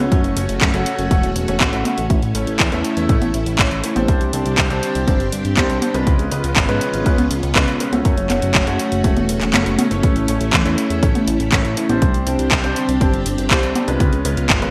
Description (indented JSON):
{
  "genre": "italo disco",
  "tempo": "121 BPM",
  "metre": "4/4",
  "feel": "straight",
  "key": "A major",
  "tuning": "A4 = 440 Hz",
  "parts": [
    { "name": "string machine, full ensemble", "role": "sustained chords", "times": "0.0-14.7 s", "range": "A3 to G4", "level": "-25 LUFS", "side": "equal", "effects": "ensemble chorus" },
    { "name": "clear grand piano", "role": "stabs", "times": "0.0-14.7 s", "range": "G3 to E5", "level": "-26 LUFS", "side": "equal", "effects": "lush chorus, delay" },
    { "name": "fat analog bass", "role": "bass", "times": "0.0-14.7 s", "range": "E1 to F#2", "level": "-24 LUFS", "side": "equal", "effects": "tube saturation" },
    { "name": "electronic kick drum", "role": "drums", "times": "0.1-14.6 s", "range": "none", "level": "-20 LUFS", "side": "equal", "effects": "overdrive" },
    { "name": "house drum kit", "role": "drums", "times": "0.1-14.7 s", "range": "congas, handclaps, hi-hat", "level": "-22 LUFS", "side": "equal", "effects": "overdrive, gated reverb" },
    { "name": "swell", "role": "sound effects", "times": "9.3-10.0 s", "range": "none", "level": "-31 LUFS", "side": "equal", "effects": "none" }
  ],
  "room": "moderate plate reverb, RT60 1.0 s, digital ambience",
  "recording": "bright 1980s-style digital production",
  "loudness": "-17 LUFS",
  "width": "mono",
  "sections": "0.0-14.7 A section",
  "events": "swell 9.3-10.0; kick drops out 9.5-10.0",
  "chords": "0.1 F#m; 2.1 A; 4.1 Csus2; 6.1 C#7; 8.1 F#m; 10.0 A; 12.0 Csus2; 14.0 C#7"
}